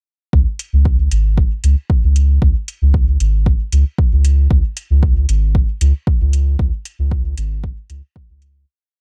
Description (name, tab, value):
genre	dub techno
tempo	115 BPM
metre	4/4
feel	straight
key	unclear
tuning	A4 = 440 Hz
part	soft dub sub bass	bass	0.3-8.7 s	G#1 to C#2	-16 LUFS	equal	sidechain pumping
part	electronic kick drum	drums	0.3-8.3 s	none	-18 LUFS	equal	none
part	electronic hi-hat	drums	0.6-8.5 s	none	-31 LUFS	equal	overdrive
room	little or no reverb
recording	dry, gritty hardware recording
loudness	-16 LUFS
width	mono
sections	0.3-8.7 groove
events	fade-out 5.9-8.7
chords	none